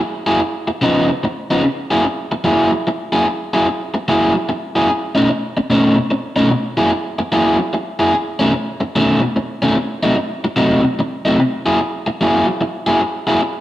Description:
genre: blues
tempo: 148 BPM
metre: 4/4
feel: swing 65% on 8ths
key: F# mixolydian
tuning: A4 = 440 Hz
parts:
  - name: overdriven electric guitar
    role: solo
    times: 0.0-13.5 s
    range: B2 to G#4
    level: -14 LUFS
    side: equal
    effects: spring reverb
room: wet stone room reverb, RT60 1.3 s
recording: rough rehearsal-room recording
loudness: -14 LUFS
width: side -14 dB against mid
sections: 0.0-1.6 A section; 1.6-13.6 A section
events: none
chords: 0.0 F#9; 0.8 C#9; 1.6 F#9; 4.9 B9; 6.5 F#9; 8.2 B9; 9.8 Cdim7; 11.4 F#9

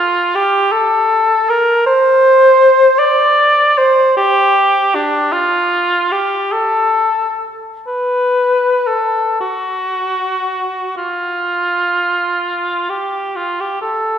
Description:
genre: classical, free, expressive piece for unaccompanied cor anglais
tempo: 24-54 BPM (dotted quarters)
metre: 6/8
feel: rubato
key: unclear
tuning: A4 = 442 Hz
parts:
  - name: warm cor anglais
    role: solo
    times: 0.0-14.2 s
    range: D4 to D5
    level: -12 LUFS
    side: equal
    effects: none
room: wet concert hall reverb, RT60 1.9 s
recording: heard from further back in the room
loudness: -12 LUFS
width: side -8 dB against mid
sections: 0.0-12.9 A section; 12.9-14.2 B section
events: none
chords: none

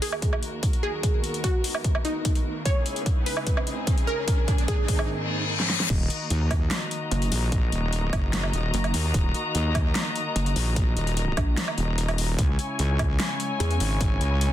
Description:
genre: heavy wobble dubstep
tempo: 148 BPM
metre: 4/4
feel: half-time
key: Eb phrygian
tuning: A4 = 440 Hz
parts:
  - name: wide unison pluck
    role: melody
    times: 0.0-5.1 s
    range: Eb4 to Db5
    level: -31 LUFS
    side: right 1 dB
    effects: cassette tape, ping-pong delay
  - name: dark studio string section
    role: sustained chords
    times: 0.0-14.5 s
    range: Db2 to Bb5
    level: -31 LUFS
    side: left 2 dB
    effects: vintage 12-bit sampler grit, sidechain pumping, low-pass filter
  - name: dubstep drum kit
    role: drums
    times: 0.0-14.5 s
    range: crash cymbal, hi-hat, snare drum, woodblock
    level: -30 LUFS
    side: equal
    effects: none
  - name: riser and reverse cymbal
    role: sound effects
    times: 1.4-5.9 s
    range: none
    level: -32 LUFS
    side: left 1 dB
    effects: none
  - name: electronic kick drum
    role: drums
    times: 0.2-14.1 s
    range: none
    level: -24 LUFS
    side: equal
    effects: none
  - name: wobble bass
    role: bass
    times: 5.9-14.5 s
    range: Eb1 to Eb2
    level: -25 LUFS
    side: equal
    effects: chorus, overdrive
  - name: pulsing pluck wobble bass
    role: bass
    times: 7.1-13.8 s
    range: Gb1 to Fb2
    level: -24 LUFS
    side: equal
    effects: chorus, overdrive
room: digital ambience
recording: dense, heavily limited modern master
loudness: -22 LUFS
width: side -12 dB against mid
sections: 0.0-5.9 A section; 5.9-14.5 B section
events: build-up 0.0-5.9; riser 1.4-5.1; drum fill 2.7-5.1, 5.6-5.9; reverse cymbal 5.1-5.9; drop 5.9-14.5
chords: 0.0 Ebm; 1.0 Abm9/Eb; 2.7 Dbmadd9; 4.3 Abadd9; 5.9 Ebm; 12.4 Dbm

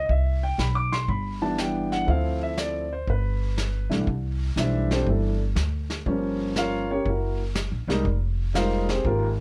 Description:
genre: jazz piano trio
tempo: 121 BPM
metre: 4/4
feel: swing 68% on 8ths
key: C major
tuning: A4 = 441 Hz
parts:
  - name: warm concert grand piano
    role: melody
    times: 0.0-9.3 s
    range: C2 to D6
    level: -29 LUFS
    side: equal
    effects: none
  - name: upright bass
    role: bass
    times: 0.0-9.4 s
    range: F1 to D2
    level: -28 LUFS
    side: equal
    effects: none
  - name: vintage brush drum kit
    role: drums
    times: 0.1-9.4 s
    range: brushed snare drum, hi-hat, kick drum, snare drum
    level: -34 LUFS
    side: equal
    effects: none
room: little or no reverb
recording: none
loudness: -25 LUFS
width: mono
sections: 0.0-4.1 A section; 4.1-9.4 B section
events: none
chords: 0.1 Cmaj7; 2.1 Dm7; 3.1 C69; 6.1 Gm7b5; 7.0 F#7; 8.0 Fm11

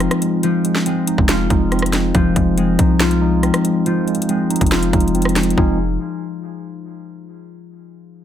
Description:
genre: hip hop, trap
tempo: 140 BPM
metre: 4/4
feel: half-time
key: F minor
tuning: A4 = 435 Hz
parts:
  - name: mellow tine electric piano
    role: accompaniment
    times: 0.0-5.8 s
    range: F3 to F4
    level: -19 LUFS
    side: right 3 dB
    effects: medium stereo tremolo, low-pass filter
  - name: concert harp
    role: arpeggios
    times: 0.0-5.8 s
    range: F3 to Ab4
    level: -20 LUFS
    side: left 6 dB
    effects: low-pass filter, tape echo
  - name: warm 808-style bass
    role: bass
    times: 0.0-6.0 s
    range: F1 to C2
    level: -21 LUFS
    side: equal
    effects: none
  - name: trap drum kit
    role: drums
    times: 0.0-5.7 s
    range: hi-hat, kick drum, rim click, snare drum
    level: -19 LUFS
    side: equal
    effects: none
room: light reverb, digital ambience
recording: none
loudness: -14 LUFS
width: side -10 dB against mid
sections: 0.0-5.6 A section; 5.6-7.3 B section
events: filter sweep 0.0-5.6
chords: 0.0 Fm7

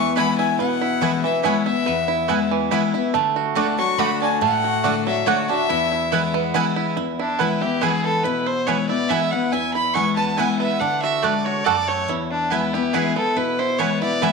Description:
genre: bluegrass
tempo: 141 BPM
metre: 3/4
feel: straight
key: E mixolydian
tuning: A4 = 440 Hz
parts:
  - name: rich fiddle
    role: second line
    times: 0.0-6.3 s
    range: C#5 to C#6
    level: -24 LUFS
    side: left 9 dB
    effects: none
  - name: picked steel-string acoustic guitar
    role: accompaniment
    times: 0.0-14.3 s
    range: E2 to F#4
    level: -23 LUFS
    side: left 8 dB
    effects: none
  - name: bluegrass banjo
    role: arpeggios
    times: 0.0-14.3 s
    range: E3 to A4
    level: -24 LUFS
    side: right 13 dB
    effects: slapback echo
  - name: mandolin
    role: stabs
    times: 0.2-14.3 s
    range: A3 to G#5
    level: -26 LUFS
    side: right 11 dB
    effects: slapback echo
  - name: clear fiddle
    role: melody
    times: 7.2-14.3 s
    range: D4 to C#6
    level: -22 LUFS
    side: right 1 dB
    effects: none
room: moderate echo chamber reverb, RT60 2.5 s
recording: 1960s-style stereo with parts hard left and right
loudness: -18 LUFS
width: side -4 dB against mid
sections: 0.0-7.0 A section; 7.0-14.3 B section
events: fiddle solo 0.0-7.0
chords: 0.0 E; 3.1 D; 5.7 E; 10.8 D; 12.1 E

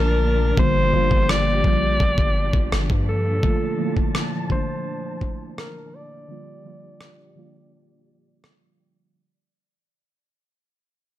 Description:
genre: contemporary R&B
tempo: 84 BPM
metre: 4/4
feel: straight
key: unclear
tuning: A4 = 440 Hz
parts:
  - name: warm alto saxophone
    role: melody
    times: 0.0-8.4 s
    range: A4 to D5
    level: -25 LUFS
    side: equal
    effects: low-pass filter, tape echo
  - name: muted felt-like synth keys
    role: accompaniment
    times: 0.0-9.2 s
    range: D3 to G5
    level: -26 LUFS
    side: equal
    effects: chorus, low-pass filter
  - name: warm studio string section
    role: sustained chords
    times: 0.0-9.1 s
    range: Bb2 to A5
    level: -33 LUFS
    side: equal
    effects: sidechain pumping, low-pass filter
  - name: long sustained 808-style bass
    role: bass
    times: 0.0-3.4 s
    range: G1 to G2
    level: -22 LUFS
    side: equal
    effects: none
  - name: dusty soul sampler-style drum kit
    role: drums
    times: 0.6-8.6 s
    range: kick drum, rim click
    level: -22 LUFS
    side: equal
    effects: none
room: digital ambience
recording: none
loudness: -18 LUFS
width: side -14 dB against mid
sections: 0.0-9.1 A section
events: fade-out 0.0-9.1; filter sweep 0.0-9.1; synth keys fill 8.1-9.1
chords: 0.0 Bbmaj7; 0.6 Gm7; 3.4 Bbmaj7; 6.3 Gm7

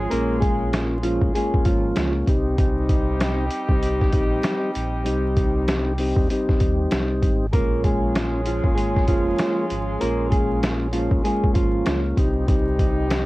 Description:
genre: hip hop, boom-bap hip-hop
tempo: 97 BPM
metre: 4/4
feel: swing 60% on 16ths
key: Bb dorian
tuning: A4 = 438 Hz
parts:
  - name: mellow electric guitar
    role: melody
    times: 0.0-2.1, 7.5-12.0 s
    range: F3 to Bb4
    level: -26 LUFS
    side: right 2 dB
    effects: high-pass filter, low-pass filter, cassette tape
  - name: dark horn section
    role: stabs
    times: 0.0-13.3 s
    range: G3 to Ab4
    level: -30 LUFS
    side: equal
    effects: high-pass filter, low-pass filter, cassette tape, analog delay
  - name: sub bass with octave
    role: bass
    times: 0.0-13.3 s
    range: F1 to Eb2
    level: -26 LUFS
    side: equal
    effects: none
  - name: mellow tonewheel organ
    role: accompaniment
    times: 0.1-13.3 s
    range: G3 to G4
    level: -24 LUFS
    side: left 1 dB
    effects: slow rotary speaker, cassette tape, high-pass filter, low-pass filter
  - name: boom bap sampler-style drum kit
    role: drums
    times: 0.1-13.3 s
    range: hi-hat, kick drum, snare drum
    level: -22 LUFS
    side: equal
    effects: cassette tape
room: little or no reverb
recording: home recording on cassette, vinyl crackle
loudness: -19 LUFS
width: side -19 dB against mid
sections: 0.0-13.3 A section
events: none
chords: 0.0 Bbm7; 2.3 Cm; 7.5 Bbm7; 12.2 Cm

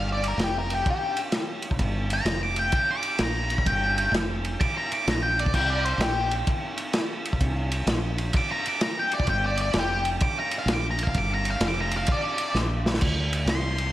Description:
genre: blues rock power trio and southern rock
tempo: 128 BPM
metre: 4/4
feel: swing 66% on 8ths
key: unclear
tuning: A4 = 440 Hz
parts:
  - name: octave-fuzz lead guitar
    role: melody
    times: 0.0-13.9 s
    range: G4 to D6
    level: -27 LUFS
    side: left 1 dB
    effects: distortion, slapback echo
  - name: woody fretless electric bass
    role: bass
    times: 0.0-13.9 s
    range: F1 to D2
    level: -28 LUFS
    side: equal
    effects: none
  - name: vintage drum kit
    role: drums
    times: 0.2-13.9 s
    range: crash cymbal, kick drum, ride cymbal, snare drum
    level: -26 LUFS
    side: equal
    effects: none
room: moderate lush hall reverb, RT60 2.3 s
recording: big arena sound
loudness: -23 LUFS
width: side -14 dB against mid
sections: 0.0-13.9 A section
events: lead electric guitar solo 0.0-13.9; drum fill 12.6-13.0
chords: 0.0 Fsus24; 5.5 Bbsus2; 9.3 G5; 13.0 Csus2

